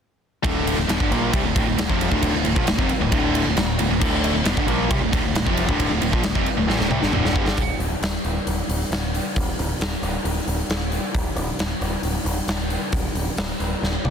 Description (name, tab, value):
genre	hard rock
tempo	134 BPM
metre	4/4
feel	straight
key	D minor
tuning	A4 = 443 Hz
part	heavy high-gain guitar	riff	0.4-7.6 s	D2 to Bb3	-26 LUFS	right 13 dB	distortion
part	overdriven electric guitar	riff	0.4-7.6 s	D2 to Bb3	-26 LUFS	right 1 dB	none
part	tight distorted guitar	riff	0.4-7.6 s	D2 to Bb3	-26 LUFS	left 10 dB	distortion
part	growling picked electric bass	bass	0.4-14.1 s	D1 to C2	-26 LUFS	equal	overdrive
part	huge arena drum kit	drums	0.4-14.1 s	crash cymbal, hi-hat, kick drum, ride cymbal, snare drum, toms	-23 LUFS	equal	soft clipping on snare
room	small room ambience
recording	dense, heavily limited modern master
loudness	-19 LUFS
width	side -7 dB against mid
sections	0.4-7.6 A section; 7.6-14.1 B section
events	drum fill 6.7-7.6, 13.8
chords	0.4 Dm; 7.6 D5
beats	| 0.44 0.89 1.34 1.78 | 2.23 2.68 3.12 3.57 | 4.01 4.46 4.91 5.35 | 5.79 6.24 6.68 7.13 | 7.57 8.02 8.46 8.91 | 9.36 9.80 10.25 10.70 | 11.14 11.59 12.04 12.48 | 12.93 13.37 13.82